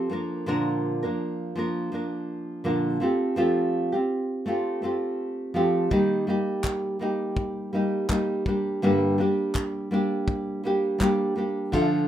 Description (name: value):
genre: acoustic pop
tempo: 82 BPM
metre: 4/4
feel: swing 55% on 16ths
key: unclear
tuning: A4 = 440 Hz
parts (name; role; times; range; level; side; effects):
- nylon-string guitar; accompaniment; 0.0-12.1 s; G2 to Bb4; -24 LUFS; equal; none
- natural country drum kit; drums; 5.9-11.9 s; handclaps, kick drum; -28 LUFS; left 1 dB; none
- warm upright piano; accompaniment; 11.7-12.1 s; D4 to F5; -33 LUFS; left 3 dB; none
room: moderate small room reverb, RT60 0.5 s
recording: rough home demo mix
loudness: -23 LUFS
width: side -11 dB against mid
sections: 0.0-5.9 A section; 5.9-12.1 B section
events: none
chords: 0.1 Bb; 3.0 Fadd9; 5.9 Eb; 8.5 Gm